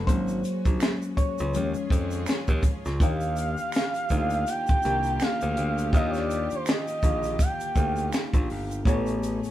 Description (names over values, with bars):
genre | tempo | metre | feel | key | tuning
R&B, neo-soul | 82 BPM | 4/4 | swing 57% on 16ths | unclear | A4 = 442 Hz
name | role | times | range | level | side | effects
reed electric piano | accompaniment | 0.0-9.5 s | A2 to F5 | -30 LUFS | left 2 dB | phaser
warm studio string section | sustained chords | 0.0-9.5 s | Eb3 to Ab4 | -41 LUFS | equal | none
modern bright picked electric bass | bass | 0.0-9.5 s | G1 to F2 | -30 LUFS | equal | none
compact cocktail drum kit | drums | 0.1-9.5 s | finger snaps, hi-hat, kick drum, snare drum | -24 LUFS | equal | none
egg shaker and finger snaps | percussion | 0.1-9.5 s | none | -43 LUFS | right 2 dB | none
gliding portamento lead | melody | 3.0-8.1 s | C5 to G5 | -28 LUFS | right 2 dB | chorus
room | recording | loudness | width
light reverb | band playing live in one room | -23 LUFS | side -13 dB against mid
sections
0.0-3.0 A section; 3.0-9.5 B section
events
reed electric piano solo 0.0-3.0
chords
0.1 Ab9sus4; 1.5 Eb9sus4; 3.0 Ebmaj9; 8.9 Amaj9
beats
| 0.07 0.81 1.54 2.27 | 3.00 3.73 4.47 5.20 | 5.93 6.66 7.39 8.12 | 8.86